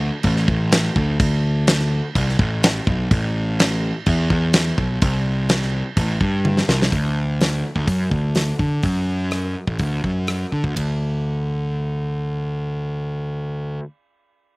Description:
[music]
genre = indie rock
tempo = 126 BPM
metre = 4/4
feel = straight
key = D mixolydian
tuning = A4 = 440 Hz
[part]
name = fuzz picked electric bass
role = bass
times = 0.0-13.8 s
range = A1 to D3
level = -20 LUFS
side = equal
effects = overdrive
[part]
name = big rock drum kit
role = drums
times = 0.2-10.9 s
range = crash cymbal, hi-hat, kick drum, ride cymbal, rim click, snare drum, toms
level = -20 LUFS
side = equal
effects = none
[sound]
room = little or no reverb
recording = recorded outdoors, with no room sound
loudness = -18 LUFS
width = side -26 dB against mid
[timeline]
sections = 0.0-6.9 A section; 6.9-10.8 B section; 10.8-14.6 C section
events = drum fill 6.5-6.9, 10.5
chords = none

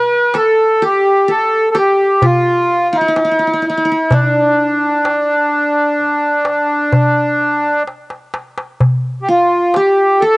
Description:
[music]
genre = Arabic maqam ensemble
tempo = 128 BPM (eighths)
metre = 10/8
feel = straight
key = unclear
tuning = A4 = 441 Hz
[part]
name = accordion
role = melody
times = 0.0-10.4 s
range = D4 to Bb4+50c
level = -12 LUFS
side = equal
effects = none
[part]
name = qanun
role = second line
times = 0.0-10.4 s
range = D4 to Bb4+50c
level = -20 LUFS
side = equal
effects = none
[part]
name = darbuka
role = percussion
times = 0.3-10.0 s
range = none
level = -16 LUFS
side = equal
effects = none
[sound]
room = light reverb, studio ambience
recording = home recording on cassette, nothing above 10.6 kHz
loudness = -11 LUFS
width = side -27 dB against mid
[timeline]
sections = 0.0-10.4 A section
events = drum fill 7.9-8.8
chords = none

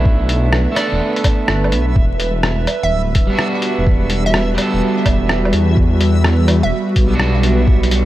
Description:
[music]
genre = future garage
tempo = 126 BPM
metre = 4/4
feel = swing 67% on 16ths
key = E minor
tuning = A4 = 440 Hz
[part]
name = electric guitar at the edge of break-up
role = accompaniment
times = 0.0-8.1 s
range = G3 to A4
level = -21 LUFS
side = right 2 dB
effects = vintage 12-bit sampler grit, sidechain pumping, tape echo
[part]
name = airy breathy pad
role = sustained chords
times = 0.0-8.1 s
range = G3 to B4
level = -22 LUFS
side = equal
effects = chorus, sidechain pumping
[part]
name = swelling detuned saw bass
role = bass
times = 0.0-8.1 s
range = D1 to E2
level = -16 LUFS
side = equal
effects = sidechain pumping
[part]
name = backwards swelling texture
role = texture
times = 0.0-8.1 s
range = E5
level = -28 LUFS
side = right 2 dB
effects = built-in reverb
[part]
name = electronic kick drum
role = drums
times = 0.1-7.8 s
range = none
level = -14 LUFS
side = equal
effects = none
[part]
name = lo-fi sampler-style drum kit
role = drums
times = 0.3-8.0 s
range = hi-hat, rim click, woodblock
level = -21 LUFS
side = equal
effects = none
[part]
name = hollow square pluck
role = melody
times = 0.8-6.9 s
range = D5 to E5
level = -26 LUFS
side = right 2 dB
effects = chorus, tape echo
[sound]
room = light reverb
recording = vinyl crackle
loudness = -13 LUFS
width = side -15 dB against mid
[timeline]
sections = 0.0-8.1 A section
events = none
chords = 0.0 G69; 2.0 Em9

